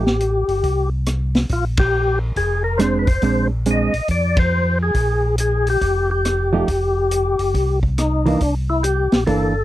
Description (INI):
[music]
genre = soul jazz organ trio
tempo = 139 BPM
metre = 4/4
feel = swing 65% on 8ths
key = unclear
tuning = A4 = 437 Hz
[part]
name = percussive tonewheel organ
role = melody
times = 0.0-9.6 s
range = D4 to Eb5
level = -20 LUFS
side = left 2 dB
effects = slow rotary speaker, overdrive, chorus vibrato
[part]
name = hollow-body jazz guitar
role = accompaniment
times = 0.0, 2.8-3.9, 6.5-9.5 s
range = E3 to G4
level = -18 LUFS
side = right 4 dB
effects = none
[part]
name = mellow tonewheel organ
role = bass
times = 0.0-9.6 s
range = F1 to F2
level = -20 LUFS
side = equal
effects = overdrive, chorus vibrato, slow rotary speaker
[part]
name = vintage drum kit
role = drums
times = 0.1-9.4 s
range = hi-hat, kick drum, ride cymbal, rim click, snare drum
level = -22 LUFS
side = equal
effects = none
[sound]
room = little or no reverb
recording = dry, close 1970s-style studio recording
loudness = -16 LUFS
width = side -14 dB against mid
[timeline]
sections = 0.0-9.6 A section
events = band accent 1.7, 4.3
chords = 0.0 Fadd9 (rootless); 1.5 Bb9; 6.7 Fsus2; 8.4 C9